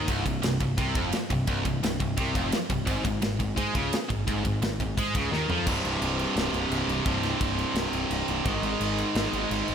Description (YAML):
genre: heavy metal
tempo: 172 BPM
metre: 4/4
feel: straight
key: C phrygian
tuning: A4 = 439 Hz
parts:
  - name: heavy high-gain guitar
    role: riff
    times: 0.0-9.7 s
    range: C2 to Ab3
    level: -27 LUFS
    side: right 1 dB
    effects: distortion
  - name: overdriven picked electric bass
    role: bass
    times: 0.0-9.7 s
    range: C1 to Ab2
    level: -32 LUFS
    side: equal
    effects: none
  - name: modern studio drum kit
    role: drums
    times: 0.1-9.7 s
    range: crash cymbal, kick drum, ride cymbal, snare drum, toms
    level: -30 LUFS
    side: equal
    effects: none
room: moderate lush hall reverb, RT60 1.8 s, small room ambience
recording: big arena sound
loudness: -24 LUFS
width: side -8 dB against mid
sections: 0.0-5.7 A section; 5.7-9.7 B section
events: drum fill 5.3-5.7; half time 5.7-9.7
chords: 0.1 Csus4; 2.9 Ab5; 5.7 C5; 8.5 Ab5